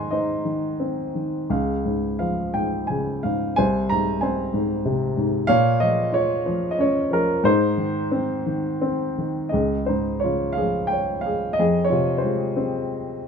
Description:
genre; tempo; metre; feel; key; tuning
classical, lyrical solo piano; 84-95 BPM; 3/4; rubato; Ab major; A4 = 440 Hz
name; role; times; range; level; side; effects
dark baby grand piano; solo; 0.0-13.3 s; C2 to C6; -20 LUFS; equal; none
room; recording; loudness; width
light reverb; minimal, uncompressed stereo recording; -20 LUFS; side -6 dB against mid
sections
0.0-9.5 A section; 9.5-13.3 B section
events
none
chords
0.0 Ab; 1.5 Db; 3.6 Ab/C; 5.5 Bbm; 7.4 Ab; 9.5 Dbadd9; 11.6 Fm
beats
0.12 0.80 | 1.50 2.20 2.89 | 3.56 4.21 4.84 | 5.48 6.13 6.78 | 7.44 8.11 8.81 | 9.53 10.23 10.92 | 11.59 12.23 12.89

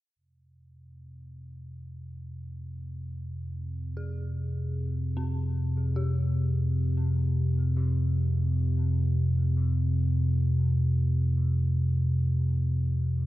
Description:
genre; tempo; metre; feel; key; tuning
dark ambient drone; free time; none; none; F minor; A4 = 438 Hz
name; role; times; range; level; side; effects
deep rumbling drone; drone; 1.1-13.3 s; F2 to C3; -26 LUFS; equal; built-in reverb
dark detuned synth bell; arpeggios; 4.0-13.3 s; C4 to Ab4; -46 LUFS; left 2 dB; chorus, dub echo
room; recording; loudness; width
little or no reverb; echo-heavy mix; -25 LUFS; side -16 dB against mid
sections
0.2-13.3 A section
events
fade-in on synth bell 0.2-13.3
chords
0.2 Fm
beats
free time

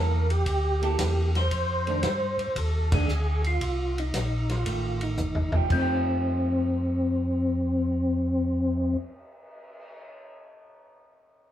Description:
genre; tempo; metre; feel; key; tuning
soul jazz organ trio; 114 BPM; 4/4; swing 69% on 8ths; F mixolydian; A4 = 442 Hz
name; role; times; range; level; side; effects
percussive tonewheel organ; melody; 0.0-9.0 s; C4 to C5; -27 LUFS; left 1 dB; slow rotary speaker, chorus vibrato
vintage hollow-body jazz guitar; accompaniment; 0.0-9.1 s; Eb3 to A4; -33 LUFS; right 4 dB; none
mellow tonewheel organ; bass; 0.0-8.9 s; G1 to G2; -27 LUFS; equal; chorus vibrato, slow rotary speaker
warm soul drum kit; drums; 0.3-9.8 s; crash cymbal, cymbal swell, hi-hat, kick drum, ride cymbal, snare drum, toms; -31 LUFS; equal; none
room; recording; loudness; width
wet studio reverb, RT60 0.6 s; band playing live in one room; -24 LUFS; side -11 dB against mid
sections
0.0-5.7 A section; 5.7-9.9 B section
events
band accent 2.8; drum fill 5.2-5.7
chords
0.0 C13 (rootless); 1.5 F13; 5.7 F9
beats
0.46 0.98 | 1.51 2.03 2.56 3.08 | 3.61 4.14 4.66 5.19 | 5.71 6.24 6.76 7.29 | 7.82 8.34 8.87 9.39

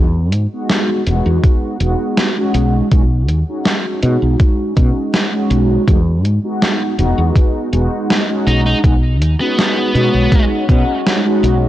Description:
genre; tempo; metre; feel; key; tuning
vaporwave; 81 BPM; 4/4; straight; B major; A4 = 440 Hz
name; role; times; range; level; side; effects
mellow synth brass; accompaniment; 0.0-11.7 s; G#3 to F#4; -18 LUFS; equal; lush chorus, analog delay
woody fretless electric bass; bass; 0.0-11.7 s; E1 to B2; -14 LUFS; equal; tube saturation, lush chorus
gated 80s digital drum machine; drums; 0.3-11.6 s; hi-hat, snare drum; -17 LUFS; equal; gated reverb, gated reverb snare, vintage 12-bit sampler grit
electronic kick drum; drums; 1.4-10.8 s; none; -12 LUFS; equal; vintage 12-bit sampler grit
high-gain lead guitar; melody; 8.5-10.4 s; B3 to D#4; -20 LUFS; equal; distortion, tape echo
room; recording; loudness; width
little or no reverb; dry, gritty hardware recording, transformer saturation, cassette tape; -12 LUFS; side -14 dB against mid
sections
0.0-11.7 A section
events
none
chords
0.0 Emaj7; 2.5 B69; 5.9 Emaj7; 8.5 B69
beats
0.69 1.43 2.17 | 2.92 3.66 4.40 5.14 | 5.88 6.62 7.36 8.10 | 8.84 9.58 10.32 11.06

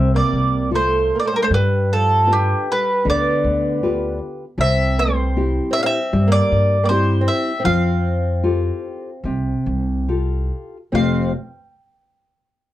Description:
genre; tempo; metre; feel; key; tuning
fado-style ballad; 77 BPM; 4/4; rubato; F major; A4 = 440 Hz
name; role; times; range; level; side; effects
mandolin; melody; 0.0-11.3 s; G4 to F5; -20 LUFS; right 1 dB; none
fingerpicked twelve-string acoustic guitar; second line; 0.0-11.3 s; D3 to D4; -25 LUFS; right 2 dB; none
nylon-string guitar; accompaniment; 0.0-11.3 s; F2 to C5; -22 LUFS; left 2 dB; none
upright bass; bass; 0.0-11.3 s; F1 to G2; -20 LUFS; equal; tube saturation
room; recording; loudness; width
light reverb; worn, warbling old tape, cassette tape, warbly pitch drift; -16 LUFS; side -14 dB against mid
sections
0.0-10.9 A section; 10.9-12.7 B section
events
none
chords
0.0 F; 1.5 G7; 4.6 C; 7.7 Fadd9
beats
0.72 | 1.50 2.28 3.06 3.82 | 4.58 5.35 6.12 6.89 | 7.65 8.43 9.24 10.09 | 10.93

